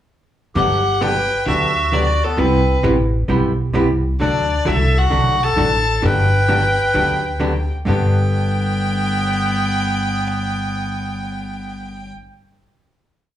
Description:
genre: country, western swing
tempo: 131 BPM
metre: 4/4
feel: swing 68% on 8ths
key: G major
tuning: A4 = 442 Hz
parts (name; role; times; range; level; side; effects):
- clear fiddle; melody; 0.6-12.1 s; A4 to A5; -22 LUFS; left 2 dB; plate reverb, slapback echo
- bright clarinet; second line; 0.6-12.1 s; B3 to B4; -22 LUFS; right 1 dB; plate reverb, slapback echo
- archtop guitar, miked and amplified; accompaniment; 0.6-12.2 s; G2 to G4; -21 LUFS; right 1 dB; plate reverb, slapback echo
- upright bass; bass; 0.6-12.1 s; G1 to D2; -20 LUFS; equal; none
room: moderate club reverb, RT60 0.8 s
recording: live gig heard through the venue's PA, club reverb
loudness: -15 LUFS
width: side -11 dB against mid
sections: 0.6-7.9 A section; 7.9-11.5 final chord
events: none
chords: 0.6 Gmaj7; 2.4 Cmaj7; 4.2 D; 6.0 Gmaj7; 7.9 G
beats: | 0.55 1.01 1.46 1.92 | 2.38 2.83 3.29 3.75 | 4.20 4.66 5.12 5.57 | 6.03 6.49 6.95 7.40 | 7.86 8.32 8.77 9.23 | 9.69 10.14 10.60 11.06

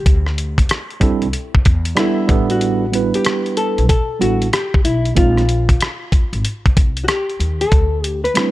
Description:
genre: hip hop, jazz-hop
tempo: 94 BPM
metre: 4/4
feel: swing 65% on 16ths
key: unclear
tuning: A4 = 440 Hz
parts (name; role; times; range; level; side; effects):
- hollow-body jazz guitar; melody; 0.0-8.5 s; E4 to B4; -21 LUFS; left 3 dB; none
- upright bass; bass; 0.0-8.3 s; Ab1 to E2; -19 LUFS; equal; none
- dusty soul sampler-style drum kit; drums; 0.1-8.5 s; hi-hat, kick drum, rim click; -16 LUFS; equal; none
- tine electric piano; accompaniment; 1.0-8.5 s; G3 to B4; -19 LUFS; right 6 dB; medium stereo tremolo
room: little or no reverb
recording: none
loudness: -14 LUFS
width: side -16 dB against mid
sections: 0.0-8.5 A section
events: none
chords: 0.0 D9sus4; 2.3 A9sus4; 5.2 Bb9sus4; 7.7 D9sus4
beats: | 0.06 0.69 1.33 1.97 | 2.61 3.25 3.89 4.53 | 5.16 5.80 6.44 7.08 | 7.72 8.36

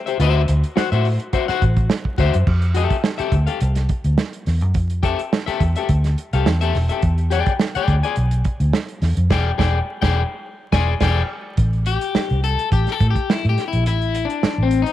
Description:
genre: funk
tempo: 105 BPM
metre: 4/4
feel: straight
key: A dorian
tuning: A4 = 440 Hz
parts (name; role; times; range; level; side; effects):
- electric guitar at the edge of break-up; accompaniment; 0.1-14.9 s; C4 to G#5; -22 LUFS; left 8 dB; none
- warm soul drum kit; drums; 0.1-14.9 s; crash cymbal, hi-hat, kick drum, snare drum; -22 LUFS; right 2 dB; none
- vintage muted fingered electric bass; bass; 0.2-14.8 s; E1 to A2; -18 LUFS; equal; none
room: light reverb, small room ambience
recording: 1960s-style stereo, vinyl crackle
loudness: -17 LUFS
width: side -13 dB against mid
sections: 0.0-2.5 A section; 2.5-11.6 B section; 11.6-14.9 C section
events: band accent 9.3-11.6; clean electric guitar solo 11.6-14.9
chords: 0.2 D9; 2.5 Fmaj9; 7.0 E7#9; 11.6 Am7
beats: | 0.19 0.76 1.33 1.90 | 2.47 3.04 3.61 4.18 | 4.75 5.32 5.89 6.46 | 7.03 7.60 8.17 8.74 | 9.30 9.87 10.44 11.01 | 11.58 12.15 12.72 13.29 | 13.86 14.43

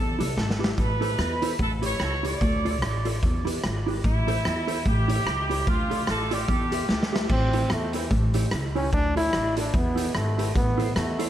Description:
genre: ska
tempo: 147 BPM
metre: 4/4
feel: swing 59% on 8ths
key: unclear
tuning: A4 = 438 Hz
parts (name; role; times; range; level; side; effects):
- clear horn section; melody; 0.0-7.1 s; E4 to D5; -30 LUFS; right 1 dB; dub echo
- upright bass; bass; 0.0-11.3 s; G#1 to E2; -27 LUFS; equal; none
- mellow electric guitar; accompaniment; 0.2-11.3 s; E4 to E5; -32 LUFS; right 3 dB; analog chorus, dub echo
- raw garage drum kit; drums; 0.2-11.3 s; crash cymbal, hi-hat, kick drum, rim click, snare drum; -27 LUFS; equal; none
- clear trombone; melody; 7.3-11.3 s; E3 to E4; -27 LUFS; equal; dub echo
room: light reverb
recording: vinyl crackle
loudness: -22 LUFS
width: side -11 dB against mid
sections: 0.0-7.3 A section; 7.3-11.3 B section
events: drum fill 0.4-0.8, 6.9-7.3; trombone solo 7.3-11.3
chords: 0.0 Em; 0.8 Am; 1.6 A7; 2.4 Dm; 3.2 Em; 4.0 Am; 4.9 A7; 5.7 Dm; 6.5 Em; 7.3 Am; 8.1 A7; 8.9 Dm; 9.7 Em; 10.5 Am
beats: 0.37 | 0.78 1.19 1.59 2.00 | 2.41 2.82 3.22 3.63 | 4.04 4.45 4.86 5.26 | 5.67 6.08 6.48 6.89 | 7.30 7.71 8.11 8.52 | 8.92 9.33 9.74 10.14 | 10.55 10.95

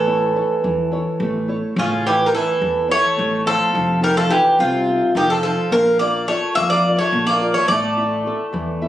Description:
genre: greek folk, Greek bouzouki band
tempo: 213 BPM (eighths)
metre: 7/8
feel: straight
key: unclear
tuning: A4 = 441 Hz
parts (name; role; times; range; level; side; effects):
- Greek bouzouki; melody; 0.0-8.9 s; F4 to E5; -18 LUFS; equal; none
- Greek bouzouki; second line; 0.0-8.9 s; C3 to Bb3; -22 LUFS; right 2 dB; none
- nylon-string guitar; accompaniment; 0.0-8.9 s; C3 to E5; -24 LUFS; left 1 dB; none
- upright bass; bass; 0.0-8.9 s; F1 to F2; -27 LUFS; equal; none
room: moderate studio reverb, RT60 0.6 s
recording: recorded on a phone in the room, studio reverb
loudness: -16 LUFS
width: side -12 dB against mid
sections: 0.0-8.9 A section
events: none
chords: 0.0 A; 3.7 F7; 5.7 Bb; 7.7 A5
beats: 0.08 0.36 0.64 0.93 1.21 1.49 | 1.77 2.06 2.34 2.62 2.90 3.19 3.47 | 3.75 4.03 4.31 4.59 4.88 5.16 5.44 | 5.72 6.00 6.28 6.57 6.85 7.13 7.41 | 7.69 7.97 8.25 8.53 8.81

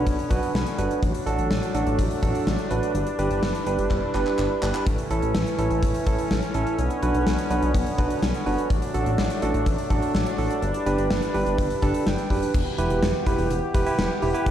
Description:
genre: synth-pop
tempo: 125 BPM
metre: 4/4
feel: straight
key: E dorian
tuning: A4 = 440 Hz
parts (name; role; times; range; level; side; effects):
- barky tine electric piano; accompaniment; 0.0-14.5 s; C#4 to A5; -26 LUFS; right 3 dB; none
- mellow brass ensemble; sustained chords; 0.0-14.5 s; D3 to B4; -28 LUFS; left 1 dB; none
- fat analog bass; bass; 0.0-14.5 s; E1 to B1; -27 LUFS; equal; none
- gated 80s drum kit; drums; 0.1-14.5 s; crash cymbal, handclaps, hi-hat, kick drum, snare drum; -26 LUFS; left 1 dB; none
room: moderate digital room reverb, RT60 1.1 s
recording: played on a big sound system in a bare room, stone room reverb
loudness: -21 LUFS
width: side -10 dB against mid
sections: 0.0-12.5 A section; 12.5-14.5 B section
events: drum fill 3.9-4.9; tine electric piano fill 11.6-12.5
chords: 0.0 Bmadd9; 1.0 D/A; 2.9 G6; 4.9 A; 6.8 Bmadd9; 8.7 D/A; 10.6 G6; 12.5 Emadd9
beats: 0.07 0.55 | 1.02 1.50 1.99 2.46 | 2.94 3.42 3.90 4.38 | 4.87 5.34 5.83 6.30 | 6.79 7.26 7.75 8.22 | 8.71 9.19 9.66 10.14 | 10.62 11.11 11.59 12.06 | 12.54 13.03 13.51 13.98 | 14.46

